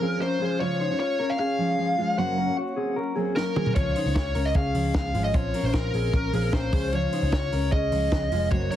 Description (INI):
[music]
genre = jangly indie pop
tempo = 152 BPM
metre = 4/4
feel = straight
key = Db major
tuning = A4 = 440 Hz
[part]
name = biting lead guitar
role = melody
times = 0.0-8.8 s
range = Bb4 to Gb5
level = -28 LUFS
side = left 1 dB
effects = overdrive, analog delay
[part]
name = fingerpicked steel-string acoustic guitar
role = accompaniment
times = 0.0-8.8 s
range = Gb2 to Gb4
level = -30 LUFS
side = right 4 dB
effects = none
[part]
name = mellow electric guitar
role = arpeggios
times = 0.0-8.8 s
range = Ab3 to Db5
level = -30 LUFS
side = left 3 dB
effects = none
[part]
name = compact cocktail drum kit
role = drums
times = 3.4-8.8 s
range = hi-hat, kick drum, snare drum, toms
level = -27 LUFS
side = equal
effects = none
[part]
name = vintage muted picked electric bass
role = bass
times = 3.8-8.7 s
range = F1 to Db2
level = -27 LUFS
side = equal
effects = none
[sound]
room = light reverb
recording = heavily compressed radio sound, multiband compression, vinyl crackle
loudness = -22 LUFS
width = side -11 dB against mid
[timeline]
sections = 0.0-8.8 A section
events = drum fill 3.4-3.8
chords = 0.4 Db; 2.2 Gb; 3.8 Db; 5.3 Bbmadd9; 6.7 Db